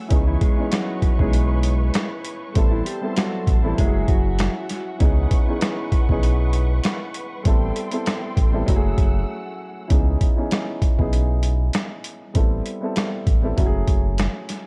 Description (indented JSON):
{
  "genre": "hip hop, boom-bap hip-hop",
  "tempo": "98 BPM",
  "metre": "4/4",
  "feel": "swing 54% on 16ths",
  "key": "C# minor",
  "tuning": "A4 = 440 Hz",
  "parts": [
    { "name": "dark grand piano", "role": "accompaniment", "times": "0.0-14.7 s", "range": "E3 to A4", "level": "-30 LUFS", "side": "equal", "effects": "high-pass filter, low-pass filter" },
    { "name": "rich symphonic string section", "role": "sustained chords", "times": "0.0-9.9 s", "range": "A3 to E6", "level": "-36 LUFS", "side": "equal", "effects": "high-pass filter, low-pass filter" },
    { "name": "round analog bass", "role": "bass", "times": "0.1-14.3 s", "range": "F#1 to C#2", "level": "-23 LUFS", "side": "equal", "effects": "none" },
    { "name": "boom bap sampler-style drum kit", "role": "drums", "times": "0.1-14.6 s", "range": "hi-hat, kick drum, rim click, snare drum", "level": "-23 LUFS", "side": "equal", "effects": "none" },
    { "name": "mellow electric guitar", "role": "melody", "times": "0.3-4.5 s", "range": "E3 to G#4", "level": "-31 LUFS", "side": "equal", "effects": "high-pass filter, low-pass filter, tape echo" }
  ],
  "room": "little or no reverb",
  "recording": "dark, warm production",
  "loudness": "-21 LUFS",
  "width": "mono",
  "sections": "0.0-9.9 A section; 9.9-14.7 B section",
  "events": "break 9.3-9.9",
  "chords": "0.1 C#m7; 2.6 Am7; 3.8 F#5; 5.0 C#m7; 7.5 Am7; 8.7 F#m7; 9.9 C#m7; 12.4 Am7; 13.6 F#m7"
}